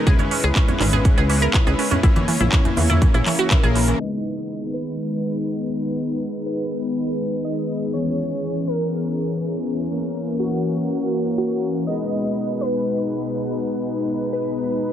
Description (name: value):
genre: progressive house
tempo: 122 BPM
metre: 4/4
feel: straight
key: G# minor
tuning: A4 = 442 Hz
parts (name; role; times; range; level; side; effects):
- evolving wavetable pad; sustained chords; 0.0-14.9 s; B2 to A#5; -28 LUFS; equal; chorus, built-in reverb, sidechain pumping
- glassy wavetable pluck; arpeggios; 0.0-4.0 s; E3 to A#4; -24 LUFS; right 4 dB; chorus, sidechain pumping, tape echo
- soft supersaw; stabs; 0.0-14.9 s; E3 to C#5; -24 LUFS; left 1 dB; sidechain pumping, low-pass filter, tape echo
- tight sequencer bass; bass; 0.1-3.9 s; G#1 to E2; -20 LUFS; equal; sidechain pumping
- big-room dance drum kit; drums; 0.1-14.9 s; handclaps, hi-hat, rim click, shaker; -25 LUFS; right 1 dB; sidechain pumping on hats, small room reverb, sidechain pumping on perc
- electronic kick drum; drums; 0.1-3.6 s; none; -17 LUFS; equal; small room reverb
- congas and woodblock; percussion; 0.2-3.4 s; none; -26 LUFS; left 1 dB; sidechain pumping on perc
- plucky unison lead; melody; 4.0-14.9 s; F#4 to D#5; -28 LUFS; right 1 dB; analog chorus, tape echo
room: light reverb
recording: low-pass filter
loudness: -19 LUFS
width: side -10 dB against mid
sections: 0.0-4.0 A section; 4.0-14.9 B section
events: filter sweep on supersaw synth 4.0-14.9; filter sweep on ambient pad 4.0-14.9; filter sweep 4.0-14.9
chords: 0.1 C#m7; 2.0 A#dim; 4.0 G#m; 7.9 C#m7; 9.9 A#dim; 11.9 G#m